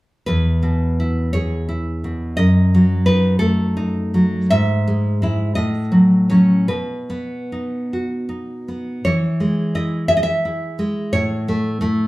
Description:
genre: romantic piece for solo classical guitar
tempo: 50-60 BPM (dotted quarters)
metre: 6/8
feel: rubato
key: E major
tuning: A4 = 440 Hz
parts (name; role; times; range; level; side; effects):
- nylon-string guitar; solo; 0.3-12.1 s; E2 to E5; -16 LUFS; equal; none
room: wet large studio reverb, RT60 0.8 s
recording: band playing live in one room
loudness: -16 LUFS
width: side -18 dB against mid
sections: 0.3-12.1 A section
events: none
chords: 0.3 E; 2.4 D#dim/F#; 4.5 E/G#; 5.6 A6; 6.7 B; 9.1 E; 11.1 A

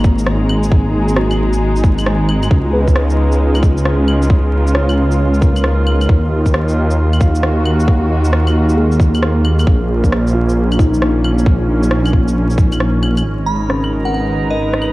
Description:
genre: future garage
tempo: 134 BPM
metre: 4/4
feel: swing 64% on 16ths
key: G# dorian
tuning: A4 = 441 Hz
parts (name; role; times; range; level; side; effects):
- muted felt-like synth keys; accompaniment; 0.0-14.9 s; A#3 to E#5; -22 LUFS; equal; chorus, sidechain pumping, tape echo
- muted studio string section; sustained chords; 0.0-14.9 s; A#2 to A#5; -20 LUFS; right 1 dB; sidechain pumping, low-pass filter
- swelling detuned saw bass; bass; 0.0-14.9 s; G#1 to D#2; -14 LUFS; equal; sidechain pumping
- electronic kick drum; drums; 0.0-12.7 s; none; -13 LUFS; equal; overdrive
- electronic shaker, rim click and claves; drums; 0.0-14.9 s; none; -22 LUFS; equal; overdrive, low-pass filter on perc, low-pass filter on snare
- drifting glass-harmonics texture; texture; 13.5-14.9 s; A#5; -30 LUFS; right 7 dB; chorus, built-in reverb
- glassy synth bell; melody; 13.5-14.7 s; D#5 to B5; -22 LUFS; equal; chorus, phaser, tape echo
room: light reverb, digital ambience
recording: vinyl crackle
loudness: -12 LUFS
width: side -19 dB against mid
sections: 0.0-13.3 A section; 13.3-14.9 B section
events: filter sweep on drum 13.3-14.9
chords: 0.0 G#9sus4; 2.5 C#9; 6.1 D#m; 9.7 A#m; 13.3 G#madd9

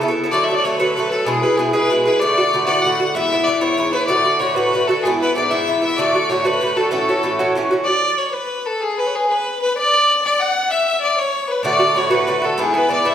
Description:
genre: celtic folk, Celtic jig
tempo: 127 BPM (dotted quarters)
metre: 6/8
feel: straight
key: unclear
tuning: A4 = 440 Hz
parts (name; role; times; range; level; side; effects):
- bright fiddle; melody; 0.0-13.1 s; G#4 to F#5; -18 LUFS; left 1 dB; none
- Irish bouzouki; accompaniment; 0.0-7.9, 11.6-13.1 s; G#2 to A4; -18 LUFS; right 2 dB; none
- rich fiddle; second line; 0.3-13.1 s; G#4 to F#5; -23 LUFS; left 3 dB; none
room: wet recital hall reverb, RT60 1.4 s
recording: recorded in a church or concert hall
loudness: -15 LUFS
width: side -9 dB against mid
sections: 0.3-7.9 A section; 7.9-13.1 A section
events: none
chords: 0.3 D; 1.3 E; 2.2 D; 3.1 E; 4.1 D; 5.0 E; 6.0 D; 6.9 A6; 7.9 N.C.; 11.6 D; 12.6 E

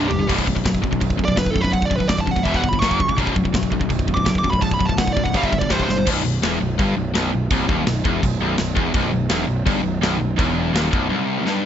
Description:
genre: heavy metal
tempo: 166 BPM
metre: 4/4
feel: straight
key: unclear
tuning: A4 = 440 Hz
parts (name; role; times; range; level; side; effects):
- high-gain lead guitar; melody; 0.0-6.1 s; G4 to D6; -24 LUFS; right 2 dB; distortion
- distorted electric guitar; riff; 0.0-11.7 s; B1 to G3; -24 LUFS; left 11 dB; overdrive
- distorted electric guitar; riff; 0.0-11.7 s; B1 to G3; -25 LUFS; right 10 dB; overdrive
- fuzz picked electric bass; bass; 0.0-11.1 s; B0 to C#2; -24 LUFS; equal; overdrive
- tight metal drum kit; drums; 0.1-11.5 s; china cymbal, crash cymbal, kick drum, snare drum, toms; -23 LUFS; equal; none
- hollow soft pad; sustained chords; 0.9-11.7 s; C3 to C5; -33 LUFS; right 1 dB; none
room: little or no reverb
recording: nothing above 7.7 kHz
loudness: -17 LUFS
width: side -9 dB against mid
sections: 0.0-6.1 A section; 6.1-11.7 B section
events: drum fill 0.0, 5.9, 11.5; lead electric guitar solo 0.0-6.1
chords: 0.3 B; 2.5 E5; 2.8 F#5; 3.2 B; 5.3 G5; 5.7 C5; 6.1 B

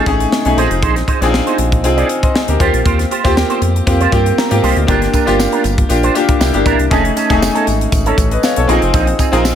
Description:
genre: polished 1980s jazz-funk pop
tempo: 118 BPM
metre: 4/4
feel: swing 54% on 16ths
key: unclear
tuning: A4 = 442 Hz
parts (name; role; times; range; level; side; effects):
- bright grand piano; accompaniment; 0.0-9.6 s; A3 to Bb5; -15 LUFS; left 2 dB; lush chorus
- electric guitar with an envelope filter; riff; 0.0-9.5 s; C4 to D5; -20 LUFS; right 7 dB; ensemble chorus
- round analog bass; bass; 0.1-9.5 s; F1 to Ab2; -16 LUFS; equal; none
- crisp fusion drum kit; drums; 0.1-9.6 s; hi-hat, kick drum, snare drum; -17 LUFS; equal; gated reverb
- tambourine; percussion; 5.1-9.6 s; none; -30 LUFS; right 12 dB; none
room: light reverb, small room ambience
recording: none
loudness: -11 LUFS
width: side -9 dB against mid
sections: 0.0-9.6 A section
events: grand piano fill 4.1-4.9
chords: 0.0 F7alt; 0.6 Bb9sus4; 2.6 Eb69; 4.9 Gm7; 6.4 C9; 6.9 F7alt; 8.7 Bb9sus4

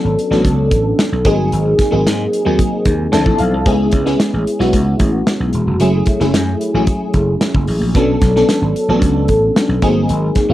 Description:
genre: polished 1980s jazz-funk pop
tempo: 112 BPM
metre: 4/4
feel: straight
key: B dorian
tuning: A4 = 440 Hz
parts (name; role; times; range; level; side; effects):
- FM electric piano; accompaniment; 0.0-10.5 s; F3 to A5; -15 LUFS; left 1 dB; ensemble chorus, cassette tape
- vintage slap bass; bass; 0.0-10.5 s; E1 to G#2; -17 LUFS; equal; none
- modern studio drum kit; drums; 0.2-10.5 s; hi-hat, kick drum, snare drum; -17 LUFS; equal; cassette tape
room: moderate booth ambience, RT60 0.2 s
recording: home recording on cassette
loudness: -12 LUFS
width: side -14 dB against mid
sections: 0.0-10.5 A section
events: FM electric piano fill 2.9-3.7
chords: 0.0 Bm9; 1.3 G#7; 3.1 Dm7; 3.7 C#m7; 5.8 F#m7; 7.9 Bm9; 9.8 G#7

